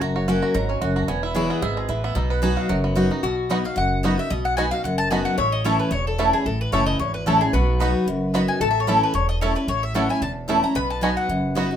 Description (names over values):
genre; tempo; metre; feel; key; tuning
bluegrass; 223 BPM; 4/4; swing 54% on 8ths; B mixolydian; A4 = 440 Hz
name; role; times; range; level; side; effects
bluegrass banjo; melody; 0.0-11.6 s; F#3 to B4; -27 LUFS; right 3 dB; none
picked steel-string acoustic guitar; accompaniment; 0.0-11.8 s; E2 to F#4; -24 LUFS; left 1 dB; none
mandolin; stabs; 0.0-11.7 s; A3 to B5; -26 LUFS; right 2 dB; none
upright bass; bass; 0.0-11.7 s; E1 to B1; -25 LUFS; equal; none
lap resonator guitar; second line; 3.2-11.7 s; F#4 to C#5; -28 LUFS; left 5 dB; none
mandolin; melody; 3.7-11.7 s; F#4 to B5; -26 LUFS; left 2 dB; none
room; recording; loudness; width
moderate studio reverb, RT60 0.6 s; minimal, uncompressed stereo recording; -19 LUFS; side -9 dB against mid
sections
0.0-3.2 A section; 3.2-11.8 B section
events
mandolin solo 0.0-3.2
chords
0.0 F#; 1.1 E; 2.2 B; 5.4 A; 7.5 B; 8.6 A; 10.8 B